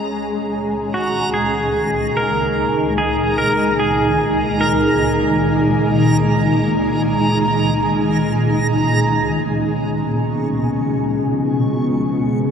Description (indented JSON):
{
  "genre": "ambient",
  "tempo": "74 BPM",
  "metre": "3/4",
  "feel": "straight",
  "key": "Db mixolydian",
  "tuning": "A4 = 440 Hz",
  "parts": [
    { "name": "shimmering ambient pad", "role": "sustained chords", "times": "0.0-12.5 s", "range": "Db2 to Ab4", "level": "-17 LUFS", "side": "equal", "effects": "chorus, built-in reverb" },
    { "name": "backwards swelling texture", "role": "texture", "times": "0.0-12.5 s", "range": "Bb5 to Db6", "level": "-26 LUFS", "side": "right 2 dB", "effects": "built-in reverb" },
    { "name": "pedal steel guitar", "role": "melody", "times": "0.9-8.6 s", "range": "Gb4 to Bb4", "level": "-22 LUFS", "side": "equal", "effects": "ping-pong delay" },
    { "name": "overtone-sweeping drone", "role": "drone", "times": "10.1-12.5 s", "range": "Db3", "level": "-22 LUFS", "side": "left 4 dB", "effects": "chorus, built-in reverb" }
  ],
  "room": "wet cathedral reverb, RT60 7.6 s",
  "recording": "in a vast, echoing space, lossy compression artefacts",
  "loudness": "-15 LUFS",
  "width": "side -7 dB against mid",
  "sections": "0.0-9.5 A section; 9.5-12.5 B section",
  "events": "fade-in on pedal steel guitar 0.0-9.5",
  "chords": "0.0 Absus2/Db; 9.5 Db7"
}